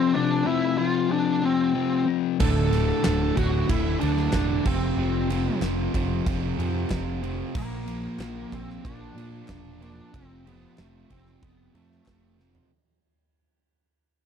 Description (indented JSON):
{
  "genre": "classic rock",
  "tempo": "93 BPM",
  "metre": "4/4",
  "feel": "straight",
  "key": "unclear",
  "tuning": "A4 = 441 Hz",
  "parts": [
    { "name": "bluesy overdriven lead guitar", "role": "melody", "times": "0.0-12.4 s", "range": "A3 to A4", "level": "-28 LUFS", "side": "equal", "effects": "distortion, slapback echo" },
    { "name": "overdriven semi-hollow guitar", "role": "riff", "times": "0.0-12.7 s", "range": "D2 to Bb3", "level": "-27 LUFS", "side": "left 13 dB", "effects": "none" },
    { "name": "distorted electric guitar", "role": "riff", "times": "2.4-12.7 s", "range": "D2 to Bb3", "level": "-31 LUFS", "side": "right 16 dB", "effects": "distortion" },
    { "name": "picked electric bass", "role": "bass", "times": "2.4-12.6 s", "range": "D1 to Bb2", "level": "-28 LUFS", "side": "right 1 dB", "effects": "none" },
    { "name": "huge arena drum kit", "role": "drums", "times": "2.4-12.7 s", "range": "crash cymbal, kick drum, ride cymbal, snare drum, toms", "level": "-30 LUFS", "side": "right 1 dB", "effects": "none" },
    { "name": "group handclap", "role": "percussion", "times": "3.0-12.2 s", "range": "none", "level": "-41 LUFS", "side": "left 4 dB", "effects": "none" }
  ],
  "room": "little or no reverb",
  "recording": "none",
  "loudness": "-22 LUFS",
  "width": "side -7 dB against mid",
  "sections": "0.0-12.7 A section",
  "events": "fade-out 0.0-12.7; drum fill 12.4-12.7",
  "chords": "0.0 F5; 2.4 D5; 4.6 F5; 7.5 Bb; 10.1 F",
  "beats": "0.46 1.11 1.75 | 2.39 3.04 3.68 4.33 | 4.97 5.62 6.26 6.91 | 7.55 8.20 8.84 9.49 | 10.13 10.78 11.42 12.07"
}